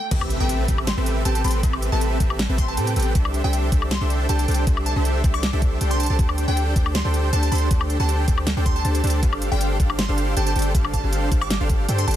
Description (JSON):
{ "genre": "future bass", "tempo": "158 BPM", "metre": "4/4", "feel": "half-time", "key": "A minor", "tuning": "A4 = 439 Hz", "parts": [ { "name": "glassy wavetable pluck", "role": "melody", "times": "0.0-12.1 s", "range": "G5 to D6", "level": "-30 LUFS", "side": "right 1 dB", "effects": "chorus, sidechain pumping, tape echo" }, { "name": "swell and impact", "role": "sound effects", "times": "0.0-1.6 s", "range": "none", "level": "-33 LUFS", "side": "equal", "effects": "none" }, { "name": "dense compressed supersaw", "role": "riff", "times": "0.1-12.2 s", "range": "C4 to A5", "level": "-26 LUFS", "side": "right 1 dB", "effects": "sidechain pumping" }, { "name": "warm 808-style bass", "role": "bass", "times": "0.1-12.2 s", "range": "G1 to A2", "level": "-22 LUFS", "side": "equal", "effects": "sidechain pumping" }, { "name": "electronic kick drum", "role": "drums", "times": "0.1-11.8 s", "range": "none", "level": "-21 LUFS", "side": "equal", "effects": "small room ambience" }, { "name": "pop drum kit", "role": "drums", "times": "0.1-12.2 s", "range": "crash cymbal, hi-hat, snare drum, woodblock", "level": "-28 LUFS", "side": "left 1 dB", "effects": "small room ambience" } ], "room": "little or no reverb", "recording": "dense, heavily limited modern master", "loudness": "-18 LUFS", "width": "side -12 dB against mid", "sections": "0.1-12.2 A section", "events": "drop 0.1-12.2; impact 0.1-1.6", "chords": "0.1 Am9; 3.2 C69; 6.2 D7sus4; 9.2 G9sus4", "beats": "| 0.11 0.49 0.87 1.25 | 1.63 2.01 2.39 2.77 | 3.15 3.53 3.91 4.29 | 4.67 5.05 5.43 5.81 | 6.19 6.57 6.95 7.33 | 7.71 8.09 8.47 8.85 | 9.23 9.61 9.99 10.37 | 10.75 11.13 11.51 11.89" }